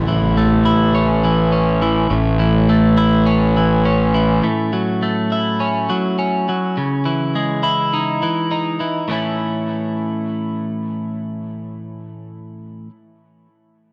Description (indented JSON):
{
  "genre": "rock",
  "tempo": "103 BPM",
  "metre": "4/4",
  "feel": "straight",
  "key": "A lydian",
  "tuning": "A4 = 440 Hz",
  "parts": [
    { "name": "twelve-string electric guitar", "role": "arpeggios", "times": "0.0-12.9 s", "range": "A2 to E4", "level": "-21 LUFS", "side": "equal", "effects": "tape echo" },
    { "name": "fuzz fingered electric bass", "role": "bass", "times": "0.0-4.4 s", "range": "A1", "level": "-17 LUFS", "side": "equal", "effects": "overdrive" }
  ],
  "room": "light reverb, small room ambience",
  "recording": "none",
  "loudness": "-18 LUFS",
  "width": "mono",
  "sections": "0.0-9.1 A section; 9.1-11.4 B section",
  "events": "none",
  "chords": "0.0 A; 4.4 F#m7/A; 6.8 C#madd9; 9.1 A",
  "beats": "0.36 0.94 1.53 | 2.11 2.69 3.27 3.85 | 4.44 5.02 5.60 6.18 | 6.77 7.35 7.93 8.52 | 9.10 9.68 10.26 10.84"
}